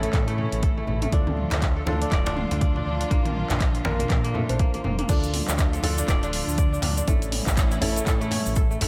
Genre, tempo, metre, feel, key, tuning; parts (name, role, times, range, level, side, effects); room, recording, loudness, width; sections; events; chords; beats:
afro house; 121 BPM; 4/4; swing 59% on 16ths; A4 = 439 Hz
warm chamber string section; sustained chords; 0.0-8.9 s; A2 to F4; -35 LUFS; equal; sidechain pumping
kora; arpeggios; 0.0-8.9 s; A3 to D5; -34 LUFS; equal; sidechain pumping, dub echo
felt-muted upright piano; stabs; 0.0-8.9 s; C#4 to C5; -36 LUFS; equal; sidechain pumping, dub echo
dark detuned saw bass; bass; 0.0-8.9 s; D1 to Bb2; -30 LUFS; equal; tube saturation, sidechain pumping
deep house drum kit; drums; 0.0-8.9 s; crash cymbal, handclaps, hi-hat, toms; -33 LUFS; equal
electronic kick drum; drums; 0.1-8.7 s; -25 LUFS; equal
congas; percussion; 0.1-5.0 s; -35 LUFS; equal
djembe; percussion; 0.9-8.9 s; -35 LUFS; equal
egg shaker; percussion; 5.1-8.8 s; -38 LUFS; equal
light reverb, small room ambience; -24 LUFS; mono
0.0-5.1 A section; 5.1-8.9 B section
drop 5.1-8.9
0.0 A; 1.1 Dm; 3.1 Bb; 5.1 Dm; 7.1 A
0.13 0.63 | 1.12 1.62 2.12 2.61 | 3.11 3.60 4.10 4.60 | 5.09 5.59 6.08 6.58 | 7.08 7.57 8.07 8.56